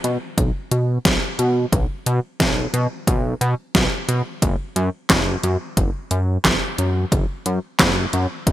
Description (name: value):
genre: synthwave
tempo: 89 BPM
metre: 4/4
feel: straight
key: unclear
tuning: A4 = 441 Hz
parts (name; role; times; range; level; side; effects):
- chorused synth bass; bass; 0.0-8.5 s; F#1 to B2; -20 LUFS; equal; none
- pop drum kit; drums; 0.0-8.5 s; handclaps, hi-hat, snare drum; -20 LUFS; equal; overdrive
- electronic kick drum; drums; 0.4-8.5 s; none; -21 LUFS; equal; overdrive
room: light reverb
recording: bright 1980s-style digital production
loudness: -18 LUFS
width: side -13 dB against mid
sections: 0.0-8.5 A section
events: none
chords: none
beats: 0.38 1.05 | 1.73 2.40 3.08 3.75 | 4.42 5.10 5.77 6.45 | 7.12 7.79 8.47